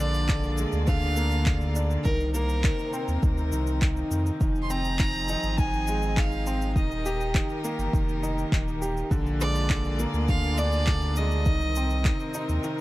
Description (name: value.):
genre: piano and strings electronica.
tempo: 102 BPM.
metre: 4/4.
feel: straight.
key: unclear.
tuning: A4 = 441 Hz.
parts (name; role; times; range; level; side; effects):
clear violin; melody; 0.0-12.8 s; Bb4 to C6; -32 LUFS; right 1 dB; none.
clear string quartet; sustained chords; 0.0-12.8 s; C3 to D5; -35 LUFS; left 1 dB; sidechain pumping.
bright upright piano; riff; 0.0-12.8 s; D3 to G4; -30 LUFS; equal; none.
warm sub bass; bass; 0.0-12.6 s; Eb1 to F2; -28 LUFS; equal; sidechain pumping.
electronic shaker and handclaps; drums; 0.1-12.8 s; none; -34 LUFS; equal; none.
electronic kick drum; drums; 0.3-12.2 s; none; -25 LUFS; equal; none.
room: little or no reverb.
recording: dark, warm production.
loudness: -23 LUFS.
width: side -17 dB against mid.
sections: 0.0-12.8 A section.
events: break 12.6.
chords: 0.0 Bb7; 2.1 Cm7; 4.4 Fm7; 6.8 Eb; 9.1 Bb7; 11.5 Cm7.